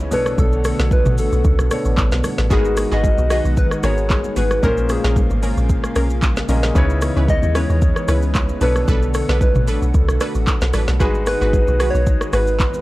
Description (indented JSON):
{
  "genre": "amapiano",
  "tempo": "113 BPM",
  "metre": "4/4",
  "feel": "swing 55% on 16ths",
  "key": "unclear",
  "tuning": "A4 = 440 Hz",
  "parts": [
    { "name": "soft struck synth lead", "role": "melody", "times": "0.0-12.8 s", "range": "G#4 to D#5", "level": "-23 LUFS", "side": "equal", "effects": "chorus, tape echo" },
    { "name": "clear concert grand piano", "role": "accompaniment", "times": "0.0-12.8 s", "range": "A#2 to D#5", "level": "-26 LUFS", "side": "left 1 dB", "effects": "none" },
    { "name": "lush unison pad", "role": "sustained chords", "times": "0.0-12.8 s", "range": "C#3 to F#4", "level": "-28 LUFS", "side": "equal", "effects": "chorus, sidechain pumping" },
    { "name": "deep log drum bass", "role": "bass", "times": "0.0-12.8 s", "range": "G#1 to D#2", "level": "-19 LUFS", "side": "equal", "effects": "none" },
    { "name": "congas", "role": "percussion", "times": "0.0-12.8 s", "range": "none", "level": "-31 LUFS", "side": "right 2 dB", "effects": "none" },
    { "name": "afro-pop drum kit", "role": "drums", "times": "0.1-12.8 s", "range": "handclaps, hi-hat, kick drum, rim click, shaker, snare drum, toms", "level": "-20 LUFS", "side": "equal", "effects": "none" },
    { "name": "analog pluck", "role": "stabs", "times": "2.5-12.5 s", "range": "B3 to B4", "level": "-28 LUFS", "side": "right 1 dB", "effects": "chorus, tape echo" }
  ],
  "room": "little or no reverb",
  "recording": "dry, gritty hardware recording, cassette tape",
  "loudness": "-15 LUFS",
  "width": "side -18 dB against mid",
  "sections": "0.0-12.8 A section",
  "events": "none",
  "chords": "0.1 Bm7; 2.5 G#m7; 4.6 A#m7; 6.8 C#m7; 8.6 Bm7; 11.0 G#m7"
}